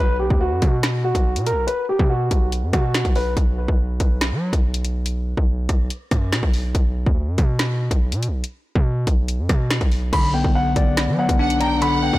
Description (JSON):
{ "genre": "hip hop, drill", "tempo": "142 BPM", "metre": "4/4", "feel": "half-time", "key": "B harmonic minor", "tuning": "A4 = 438 Hz", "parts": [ { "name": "dark concert grand piano", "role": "melody", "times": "0.0-3.3, 10.1-12.2 s", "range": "F#4 to B5", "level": "-23 LUFS", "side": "equal", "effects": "tape echo" }, { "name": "distorted 808-style bass", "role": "bass", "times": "0.0-12.2 s", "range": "B1 to F#3", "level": "-22 LUFS", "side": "equal", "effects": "distortion" }, { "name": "drill drum kit", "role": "drums", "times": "0.3-12.2 s", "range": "crash cymbal, finger snaps, hi-hat, kick drum, rim click, snare drum", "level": "-20 LUFS", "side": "equal", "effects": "none" }, { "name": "bell-like tine electric piano", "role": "accompaniment", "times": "10.1-12.2 s", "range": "D3 to D5", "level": "-21 LUFS", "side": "left 4 dB", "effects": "none" }, { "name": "clear studio violin section", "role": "second line", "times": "11.4-12.2 s", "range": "F#5 to G5", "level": "-23 LUFS", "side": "right 2 dB", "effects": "none" } ], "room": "little or no reverb", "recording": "blown-out, overdriven recording, overdrive", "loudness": "-18 LUFS", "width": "side -17 dB against mid", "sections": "0.0-10.1 A section; 10.1-12.2 B section", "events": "none", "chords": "0.0 B5; 6.7 N.C.; 10.1 Bm", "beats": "0.41 0.83 1.25 | 1.68 2.10 2.52 2.94 | 3.37 3.79 4.21 4.63 | 5.06 5.48 5.90 6.33 | 6.75 7.17 7.59 8.02 | 8.44 8.86 9.28 9.71 | 10.13 10.55 10.97 11.39 | 11.82" }